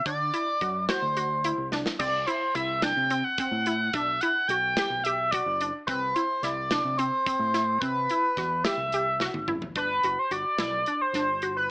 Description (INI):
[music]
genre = progressive instrumental, band music in an uneven meter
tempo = 216 BPM (eighths)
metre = 7/8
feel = straight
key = unclear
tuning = A4 = 445 Hz
[part]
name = sync lead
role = melody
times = 0.1-11.7 s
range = B4 to G5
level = -25 LUFS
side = equal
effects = chorus
[part]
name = resonant blip pluck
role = arpeggios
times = 0.1-11.6 s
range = C4 to G4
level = -32 LUFS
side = equal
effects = chorus
[part]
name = fingered electric bass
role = bass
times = 0.1-11.7 s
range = F#1 to D3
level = -35 LUFS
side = equal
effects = none
[part]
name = modern studio drum kit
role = drums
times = 0.1-11.6 s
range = crash cymbal, hi-hat, kick drum, snare drum, toms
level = -32 LUFS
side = equal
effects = none
[sound]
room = light reverb, studio ambience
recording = AM radio sound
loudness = -24 LUFS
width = side -24 dB against mid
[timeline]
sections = 0.0-9.8 A section; 9.8-11.7 B section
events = drum fill 1.7, 9.2-9.8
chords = 0.0 D7; 2.0 C; 3.9 Gmaj7/B; 5.9 Cmaj7; 9.8 Gmaj7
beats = | 0.06 0.33 0.61 0.89 1.17 1.44 1.72 | 2.00 2.27 2.55 2.83 3.11 3.38 3.66 | 3.94 4.21 4.49 4.77 5.05 5.32 5.60 | 5.88 6.16 6.43 6.71 6.99 7.26 7.54 | 7.82 8.10 8.37 8.65 8.93 9.20 9.48 | 9.76 10.04 10.31 10.59 10.87 11.14 11.42 | 11.70